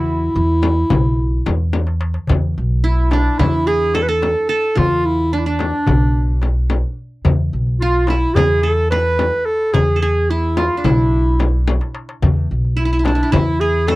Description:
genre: Turkish makam ensemble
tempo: 217 BPM (eighths)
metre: 9/8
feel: straight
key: E makam hicaz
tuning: A4 = 438 Hz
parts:
  - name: clear clarinet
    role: melody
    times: 0.0-14.0 s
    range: D4 to B4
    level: -18 LUFS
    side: equal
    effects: none
  - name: qanun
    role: second line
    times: 0.0-14.0 s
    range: D4 to B4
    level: -24 LUFS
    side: right 4 dB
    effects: none
  - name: upright bass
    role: bass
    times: 0.0-14.0 s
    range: B1 to E2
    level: -17 LUFS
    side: equal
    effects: none
  - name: darbuka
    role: percussion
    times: 0.1-14.0 s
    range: none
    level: -23 LUFS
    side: left 2 dB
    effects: none
  - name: frame drum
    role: percussion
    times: 0.6-14.0 s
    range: none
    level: -22 LUFS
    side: left 4 dB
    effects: none
room: light reverb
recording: dry, close 1970s-style studio recording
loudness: -14 LUFS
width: side -19 dB against mid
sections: 0.0-2.3 A section; 2.3-14.0 B section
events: drum fill 1.7-2.3, 11.7-12.2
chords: none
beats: 0.08 0.35 0.63 0.91 1.18 1.46 1.73 2.01 | 2.29 2.56 2.84 3.11 3.39 3.67 3.94 4.22 4.49 | 4.77 5.04 5.32 5.60 5.87 6.15 6.42 6.70 6.98 | 7.25 7.53 7.80 8.08 8.36 8.63 8.91 9.18 9.46 | 9.74 10.01 10.29 10.56 10.84 11.12 11.39 11.67 11.95 | 12.22 12.50 12.78 13.05 13.33 13.61 13.88

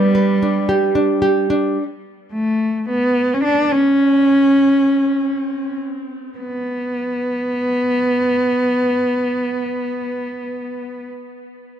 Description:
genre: pop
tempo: 94-111 BPM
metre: 4/4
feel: swing 60% on 16ths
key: unclear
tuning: A4 = 440 Hz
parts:
  - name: warm cello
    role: melody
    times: 0.0-11.1 s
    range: G3 to D4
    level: -17 LUFS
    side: equal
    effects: tape echo
  - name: nylon-string guitar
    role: accompaniment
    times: 0.0-1.8 s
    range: G3 to B4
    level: -16 LUFS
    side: right 1 dB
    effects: none
room: studio ambience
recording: dry, close 1970s-style studio recording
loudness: -15 LUFS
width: side -9 dB against mid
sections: 0.0-6.4 A section; 6.4-11.5 B section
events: slowing down 1.8-6.4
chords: 0.0 G; 1.8 N.C.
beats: 0.14 0.69 1.23 | 1.77 2.31 2.85 3.41 | 3.97 4.55 5.14 5.74 | 6.37 7.01 7.64 8.28 | 8.92 9.55 10.19 10.83

